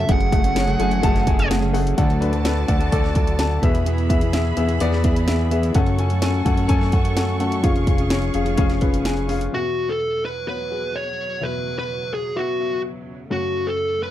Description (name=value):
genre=piano-driven pop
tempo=127 BPM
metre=4/4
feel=straight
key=unclear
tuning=A4 = 440 Hz
part: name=fuzz lead guitar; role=melody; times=0.0-1.5, 9.5-14.1 s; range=F#4 to F#5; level=-23 LUFS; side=right 1 dB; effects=distortion, slapback echo
part: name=warm baby grand piano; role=accompaniment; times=0.0-14.1 s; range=E2 to A5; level=-25 LUFS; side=left 6 dB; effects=none
part: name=clear studio string section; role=sustained chords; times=0.0-14.1 s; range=E2 to C#6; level=-33 LUFS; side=right 4 dB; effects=none
part: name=fingerpicked plugged-in steel-string acoustic guitar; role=riff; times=0.0-9.5 s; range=F#2 to A4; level=-28 LUFS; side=right 6 dB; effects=none
part: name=fat analog bass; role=bass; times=0.0-9.5 s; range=E#1 to F#2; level=-22 LUFS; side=equal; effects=none
part: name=house drum kit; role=drums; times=0.1-9.5 s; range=hi-hat, kick drum, snare drum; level=-21 LUFS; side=equal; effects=none
room=little or no reverb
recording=dry, close 1970s-style studio recording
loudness=-18 LUFS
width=side -12 dB against mid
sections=0.0-2.0 A section; 2.0-9.5 B section; 9.5-14.1 C section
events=none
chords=0.1 F#madd9; 2.0 D; 3.6 E; 5.8 F#m; 7.6 C#/E#; 9.5 Esus2; 13.3 F#m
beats=| 0.09 0.56 1.03 1.51 | 1.98 2.45 2.92 3.39 | 3.87 4.34 4.81 5.28 | 5.75 6.22 6.70 7.17 | 7.64 8.11 8.59 9.06 | 9.53 10.00 10.47 10.95 | 11.42 11.89 12.36 12.84 | 13.31 13.78